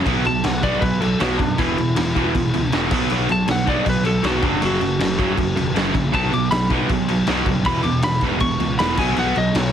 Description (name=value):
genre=punk rock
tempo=158 BPM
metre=4/4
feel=straight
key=unclear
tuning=A4 = 441 Hz
part: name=crunchy overdriven guitar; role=riff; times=0.0-9.7 s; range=E2 to B3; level=-25 LUFS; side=left 11 dB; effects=none
part: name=distorted electric guitar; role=riff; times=0.0-9.7 s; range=E2 to B3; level=-23 LUFS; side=right 10 dB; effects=distortion
part: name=fuzz picked electric bass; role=bass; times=0.1-9.7 s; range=E1 to F#2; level=-25 LUFS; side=equal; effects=overdrive
part: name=raw garage drum kit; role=drums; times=0.1-9.6 s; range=crash cymbal, kick drum, snare drum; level=-23 LUFS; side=left 1 dB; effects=none
part: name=lightly driven lead guitar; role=melody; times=0.3-9.7 s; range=D4 to D6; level=-23 LUFS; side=left 1 dB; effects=none
room=light reverb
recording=heavily compressed radio sound, multiband compression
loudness=-17 LUFS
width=side -9 dB against mid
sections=0.1-9.7 A section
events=lead electric guitar solo 0.1-9.7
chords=0.1 B5; 1.6 E5; 2.9 B5; 4.4 F#5; 6.1 B5; 7.7 E5; 9.0 B5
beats=| 0.06 0.44 0.82 1.20 | 1.58 1.96 2.34 2.73 | 3.10 3.48 3.87 4.25 | 4.62 5.00 5.38 5.76 | 6.14 6.52 6.90 7.28 | 7.66 8.04 8.42 8.79 | 9.17 9.55